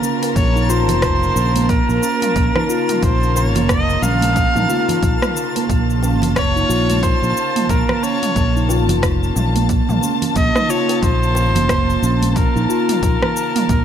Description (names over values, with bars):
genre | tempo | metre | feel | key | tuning
organic downtempo | 90 BPM | 4/4 | swing 60% on 16ths | Bb harmonic minor | A4 = 444 Hz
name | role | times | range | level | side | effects
clear kamancheh | melody | 0.0-13.8 s | Bb4 to F5 | -21 LUFS | equal | ping-pong delay
dark chamber string section | sustained chords | 0.0-13.8 s | Db3 to A5 | -25 LUFS | left 2 dB | sidechain pumping
steel tongue drum | arpeggios | 0.0-13.8 s | Bb3 to F4 | -21 LUFS | right 3 dB | ping-pong delay
deep house drum kit | drums | 0.0-13.8 s | hi-hat, rim click, shaker, toms | -24 LUFS | equal | overdrive
twinkling granular texture | texture | 0.0-13.8 s | A5 | -30 LUFS | equal | built-in reverb
bongos and congas | percussion | 0.2-13.3 s | none | -27 LUFS | right 1 dB | none
fretless electric bass | bass | 0.4-13.8 s | F1 to Bb1 | -18 LUFS | left 1 dB | none
electronic kick drum | drums | 0.4-13.8 s | none | -20 LUFS | left 1 dB | overdrive
room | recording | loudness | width
light reverb, small room ambience | none | -14 LUFS | side -9 dB against mid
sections
0.0-13.8 A section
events
none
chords
0.0 Bbmadd9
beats
| 0.36 1.03 1.69 2.36 | 3.03 3.69 4.36 5.03 | 5.69 6.36 7.03 7.69 | 8.36 9.03 9.69 10.36 | 11.03 11.69 12.36 13.03 | 13.69